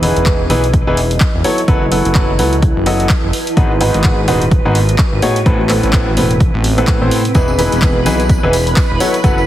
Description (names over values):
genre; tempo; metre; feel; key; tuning
piano house; 127 BPM; 4/4; swing 58% on 16ths; E major; A4 = 439 Hz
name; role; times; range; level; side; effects
clear grand piano; riff; 0.0-9.4 s; G#2 to D#5; -16 LUFS; equal; sidechain pumping, digital delay
fat analog bass; bass; 0.0-9.5 s; D#1 to C#2; -16 LUFS; equal; sidechain pumping
punchy analog drum machine; drums; 0.0-9.3 s; handclaps, hi-hat; -21 LUFS; equal; overdrive
granular cloud pad; texture; 0.0-9.5 s; C4 to A5; -22 LUFS; right 1 dB; built-in reverb, sidechain pumping
electronic kick drum; drums; 0.3-9.3 s; none; -14 LUFS; equal; overdrive
analog string pad; sustained chords; 7.3-9.5 s; B4 to B5; -22 LUFS; right 1 dB; ensemble chorus, sidechain pumping
tambourine; percussion; 7.3-9.5 s; none; -29 LUFS; equal; none
room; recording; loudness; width
light reverb; heavily compressed radio sound, multiband compression; -11 LUFS; side -13 dB against mid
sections
0.0-9.5 A section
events
none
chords
0.0 Emaj7; 1.4 B7sus4/F#; 3.6 G#m7; 5.5 Amadd9; 7.3 Emaj7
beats
0.26 0.74 1.21 | 1.68 2.15 2.63 3.10 | 3.57 4.04 4.51 4.99 | 5.46 5.93 6.41 6.88 | 7.35 7.82 8.29 8.77 | 9.24